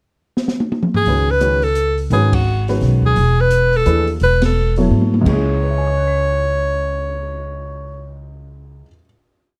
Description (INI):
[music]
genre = modal jazz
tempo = 172 BPM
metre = 3/4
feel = swing 62% on 8ths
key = C# minor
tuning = A4 = 442 Hz
[part]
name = open jazz drum kit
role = drums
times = 0.4-7.3 s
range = crash cymbal, cymbal swell, hi-hat, kick drum, ride cymbal, snare drum, toms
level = -24 LUFS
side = equal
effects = none
[part]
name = bright alto saxophone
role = melody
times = 1.0-8.1 s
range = F#4 to C#5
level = -20 LUFS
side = equal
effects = none
[part]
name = dark baby grand piano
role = accompaniment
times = 1.1-9.0 s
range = C#2 to B6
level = -23 LUFS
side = equal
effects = none
[part]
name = upright bass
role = bass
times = 1.1-8.8 s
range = E1 to G#2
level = -20 LUFS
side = equal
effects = none
[sound]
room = light reverb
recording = dark, warm production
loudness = -16 LUFS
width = mono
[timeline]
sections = 0.0-1.1 pickup bar; 1.1-5.3 A section; 5.3-7.4 final chord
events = drum fill 0.4-1.1, 4.9-5.3; band accent 2.3, 4.4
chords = 0.0 N.C.; 1.1 C#9sus4; 3.2 Esus4; 5.3 C#m